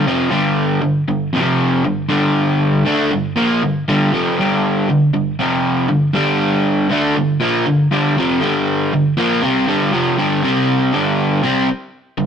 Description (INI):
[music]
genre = rock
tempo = 119 BPM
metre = 4/4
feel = straight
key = G minor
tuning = A4 = 440 Hz
[part]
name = crunchy overdriven guitar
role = solo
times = 0.0-12.3 s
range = F2 to D4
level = -14 LUFS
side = equal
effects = none
[sound]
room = moderate stone room reverb, RT60 1.0 s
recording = rough rehearsal-room recording, tube saturation, nothing above 11.0 kHz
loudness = -14 LUFS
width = side -7 dB against mid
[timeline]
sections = 0.0-10.2 A section; 10.2-12.3 B section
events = none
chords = 0.0 G5; 1.3 F5; 1.9 Gm; 5.4 F5; 5.9 Gm; 10.2 G5; 10.4 C5; 10.9 G5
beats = | 0.07 0.58 1.09 1.60 | 2.11 2.61 3.12 3.63 | 4.13 4.64 5.14 5.65 | 6.15 6.66 7.16 7.67 | 8.17 8.67 9.18 9.68 | 10.18 10.68 11.18 11.68 | 12.18